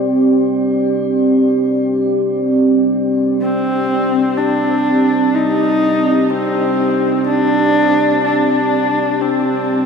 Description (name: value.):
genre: ambient.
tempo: free time.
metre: none.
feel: none.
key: C minor.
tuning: A4 = 441 Hz.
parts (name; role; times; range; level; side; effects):
dark analog pad; sustained chords; 0.0-9.9 s; C4 to D5; -15 LUFS; right 1 dB; chorus, shimmer reverb.
warm horsehead fiddle; melody; 3.4-9.9 s; C4 to Eb4; -15 LUFS; left 1 dB; shimmer reverb, ping-pong delay.
room: wet huge ambient reverb, RT60 7.5 s.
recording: in a vast, echoing space.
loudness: -13 LUFS.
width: side -6 dB against mid.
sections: 0.0-3.4 A section; 3.4-9.9 B section.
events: none.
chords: 0.0 Csus2.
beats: free time.